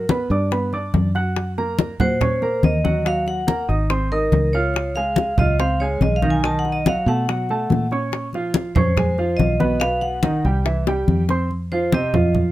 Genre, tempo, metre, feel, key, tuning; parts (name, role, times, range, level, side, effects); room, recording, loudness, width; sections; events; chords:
Afro-Cuban jazz; 142 BPM; 4/4; straight; A4 = 439 Hz
vibraphone with medium hard mallets; melody; 0.0-12.3 s; Bb4 to A5; -23 LUFS; equal
warm upright piano; accompaniment; 0.0-12.5 s; Cb3 to Gb6; -24 LUFS; right 2 dB
fingered electric bass; bass; 0.0-12.5 s; Ab1 to B2; -22 LUFS; equal
bongos; percussion; 0.1-11.4 s; -27 LUFS; left 7 dB
congas; percussion; 0.1-12.5 s; -22 LUFS; left 1 dB
little or no reverb; close, detailed microphones; -17 LUFS; side -15 dB against mid
0.0-11.5 A section; 11.5-12.5 B section
drum fill 10.9-11.5; vibraphone solo 11.5-12.5
0.0 Abm; 0.5 G; 1.4 Gb; 3.1 Ebm; 3.9 Ab; 4.7 Dbmaj7; 6.4 B9; 8.1 Bbm9; 9.8 B; 10.7 C; 11.5 F5